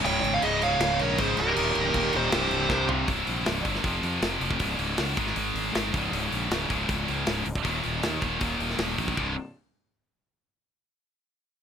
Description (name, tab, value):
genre	heavy metal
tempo	158 BPM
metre	4/4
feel	straight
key	C phrygian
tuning	A4 = 442 Hz
part	high-gain lead guitar	melody	0.0-2.9 s	Bb4 to G5	-28 LUFS	right 1 dB	distortion, digital delay
part	distorted electric guitar	riff	0.0-3.1 s	C2 to Eb3	-30 LUFS	equal	overdrive
part	scooped high-gain guitar	riff	0.0-9.3 s	C2 to Ab3	-30 LUFS	left 12 dB	distortion
part	scooped high-gain guitar	riff	0.0-9.3 s	C2 to Ab3	-30 LUFS	right 12 dB	distortion
part	fuzz fingered electric bass	bass	0.0-9.4 s	C1 to F2	-32 LUFS	equal	overdrive
part	high-gain lead guitar	second line	0.1-2.9 s	G4 to Db5	-33 LUFS	right 5 dB	distortion
part	tight metal drum kit	drums	0.1-9.3 s	crash cymbal, hi-hat, kick drum, snare drum, toms	-32 LUFS	equal	none
room	little or no reverb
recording	none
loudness	-24 LUFS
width	side -8 dB against mid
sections	0.0-3.1 A section; 3.1-9.2 B section; 9.2-10.7 C section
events	half time 0.0-3.1; drum fill 2.7-3.1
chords	0.0 Db; 1.6 Eb; 2.3 C5; 3.8 F5; 4.6 Db5; 5.2 Ab5; 5.9 Db5; 7.7 Eb5; 9.2 C5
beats	| 0.05 0.43 0.81 1.19 | 1.57 1.95 2.32 2.70 | 3.08 3.46 3.84 4.22 | 4.60 4.98 5.37 5.75 | 6.13 6.51 6.89 7.27 | 7.65 8.03 8.41 8.79 | 9.18